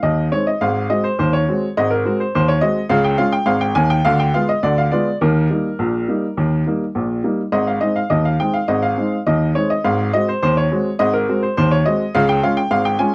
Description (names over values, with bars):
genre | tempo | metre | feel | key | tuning
ragtime piano | 104 BPM | 2/4 | straight | Ab major | A4 = 441 Hz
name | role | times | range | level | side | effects
clear upright piano | solo | 0.0-13.1 s | Ab1 to Ab5 | -15 LUFS | equal | none
room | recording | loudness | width
light reverb | dry, close 1970s-style studio recording | -15 LUFS | side -30 dB against mid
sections
0.0-13.1 A section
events
none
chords
0.0 Ab; 0.6 Ab7; 2.9 Db; 4.1 Ddim7; 5.2 Eb; 7.5 Ab; 9.8 Ab7; 12.1 Db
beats
0.04 | 0.61 1.18 | 1.76 2.33 | 2.90 3.48 | 4.05 4.63 | 5.21 5.79 | 6.37 6.95 | 7.53 8.11 | 8.69 9.27 | 9.84 10.42 | 10.99 11.56 | 12.13 12.71